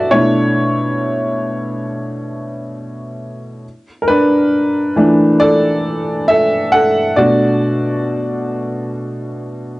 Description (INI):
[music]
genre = hip hop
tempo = 68 BPM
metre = 4/4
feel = swing 64% on 16ths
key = B minor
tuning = A4 = 439 Hz
[part]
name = warm upright piano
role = solo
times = 0.0-9.8 s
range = B2 to F#5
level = -14 LUFS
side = equal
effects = none
[sound]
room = moderate small room reverb, RT60 0.5 s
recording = cassette tape, nothing above 10.6 kHz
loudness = -13 LUFS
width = side -19 dB against mid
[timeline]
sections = 0.0-9.8 A section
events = upright piano solo 0.0-9.8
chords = 0.1 Bm11; 3.6 E7sus4; 7.2 Bm7